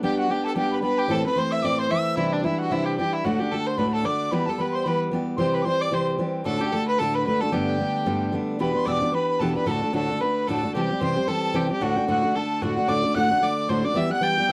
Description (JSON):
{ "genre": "celtic folk, Celtic reel", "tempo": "224 BPM", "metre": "4/4", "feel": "swing 57% on 8ths", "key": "G major", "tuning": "A4 = 440 Hz", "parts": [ { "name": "rich fiddle", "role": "melody", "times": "0.0-14.5 s", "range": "D4 to G5", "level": "-28 LUFS", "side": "equal", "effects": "none" }, { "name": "bright reedy tin whistle", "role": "second line", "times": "0.0-14.5 s", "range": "D5 to A6", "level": "-33 LUFS", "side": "equal", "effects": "slapback echo" }, { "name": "fingerpicked steel-string acoustic guitar", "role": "accompaniment", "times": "0.0-14.5 s", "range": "D2 to G4", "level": "-27 LUFS", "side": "equal", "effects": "none" } ], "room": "light reverb", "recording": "dry, close 1970s-style studio recording", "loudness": "-24 LUFS", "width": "mono", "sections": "0.0-8.6 A section; 8.6-14.5 B section", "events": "none", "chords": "0.0 G; 1.1 Am; 2.2 Cadd9; 3.2 D; 4.3 Em; 5.4 C; 6.5 D; 7.5 Gadd9; 8.6 Em7; 9.7 D; 10.7 C; 11.8 D; 14.0 Em" }